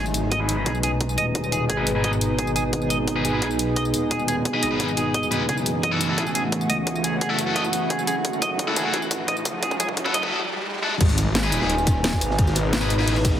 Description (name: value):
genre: dark technical drum and bass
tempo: 174 BPM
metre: 4/4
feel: straight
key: G# phrygian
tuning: A4 = 440 Hz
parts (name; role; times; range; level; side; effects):
- metallic inharmonic drone; sustained chords; 0.0-13.4 s; B2 to G#4; -28 LUFS; equal; chorus, built-in reverb, sidechain pumping
- clean electric guitar; arpeggios; 0.0-10.2 s; G#4 to D#5; -28 LUFS; right 2 dB; analog chorus, sidechain pumping, digital delay
- wide detuned saw bass; bass; 0.0-13.4 s; D#1 to C#2; -27 LUFS; equal; chorus, tube saturation, sidechain pumping
- warbly tape-like pad; texture; 0.0-13.4 s; E3 to G#5; -29 LUFS; right 1 dB; chorus, built-in reverb, sidechain pumping
- drum and bass drum kit; drums; 0.1-13.3 s; crash cymbal, hi-hat, snare drum, tambourine; -26 LUFS; left 1 dB; none
- electronic kick drum; drums; 0.3-13.3 s; none; -25 LUFS; equal; overdrive, high-pass filter on kick
- high-gain distorted guitar; stabs; 0.4-13.1 s; D#4 to B4; -28 LUFS; left 2 dB; distortion, low-pass filter, digital delay
- riser and sub drop; sound effects; 7.6-12.4 s; none; -31 LUFS; equal; none
- crunchy breakbeat drum kit; drums; 11.0-13.3 s; hi-hat, ride cymbal, snare drum; -34 LUFS; equal; none
room: moderate plate reverb, RT60 1.9 s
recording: heavily compressed radio sound, multiband compression, high-pass filter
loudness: -20 LUFS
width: side -10 dB against mid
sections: 0.0-11.0 A section; 11.0-13.4 B section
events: build-up 0.0-11.0; filter sweep on synth drone 0.0-11.0; filter sweep on distorted electric guitar 0.0-11.0; filter sweep 0.0-11.0; drum fill 5.5-10.3; riser 7.6-11.0; break 10.3-11.0; drop 11.0-13.4; impact 11.0-12.4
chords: 0.0 G#m; 5.5 F#m7; 11.0 G#m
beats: 0.32 0.66 1.01 | 1.35 1.70 2.04 2.39 | 2.73 3.08 3.42 3.77 | 4.11 4.46 4.80 5.14 | 5.49 5.83 6.18 6.52 | 6.87 7.21 7.56 7.90 | 8.25 8.59 8.94 9.28 | 9.63 9.97 10.32 10.66 | 11.01 11.35 11.70 12.04 | 12.39 12.73 13.07